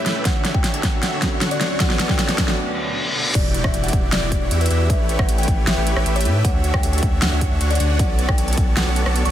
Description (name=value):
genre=future bass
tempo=155 BPM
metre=4/4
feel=half-time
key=D major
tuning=A4 = 440 Hz
part: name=kalimba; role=melody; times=0.0-9.3 s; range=B4 to C#6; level=-28 LUFS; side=left 2 dB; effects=sidechain pumping, ping-pong delay
part: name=felt-muted upright piano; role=accompaniment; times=0.0-3.4 s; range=D3 to G4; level=-30 LUFS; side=right 2 dB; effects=sidechain pumping, digital delay
part: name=shimmering ambient pad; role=sustained chords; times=0.0-9.3 s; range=D2 to G4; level=-32 LUFS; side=equal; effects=chorus, built-in reverb, phaser, sidechain pumping
part: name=supersaw chords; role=riff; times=0.0-9.3 s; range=D3 to F#5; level=-26 LUFS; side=equal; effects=sidechain pumping, low-pass filter
part: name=riser, reverse cymbal and impact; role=sound effects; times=0.8-4.9 s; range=none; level=-27 LUFS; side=equal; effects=none
part: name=big-room dance drum kit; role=drums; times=0.1-9.3 s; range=crash cymbal, hi-hat, rim click, snare drum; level=-23 LUFS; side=equal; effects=overdrive
part: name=electronic kick drum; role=drums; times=0.3-8.7 s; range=none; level=-20 LUFS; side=equal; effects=overdrive
part: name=saturated sub bass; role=bass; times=3.4-9.3 s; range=E1 to A2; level=-20 LUFS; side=equal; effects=sidechain pumping
room=little or no reverb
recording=none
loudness=-17 LUFS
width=side -11 dB against mid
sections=0.0-3.4 A section; 3.4-9.3 B section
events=build-up 0.0-3.4; drum fill 0.0-2.6; filter sweep on ambient pad 0.0-3.4; break 2.6-3.4; reverse cymbal 2.6-3.4; drop 3.4-9.3; impact 3.4-4.9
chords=0.3 Dmaj7; 1.8 Bm7; 3.4 Em7; 4.9 A7; 6.4 Dmaj7; 8.0 Bm7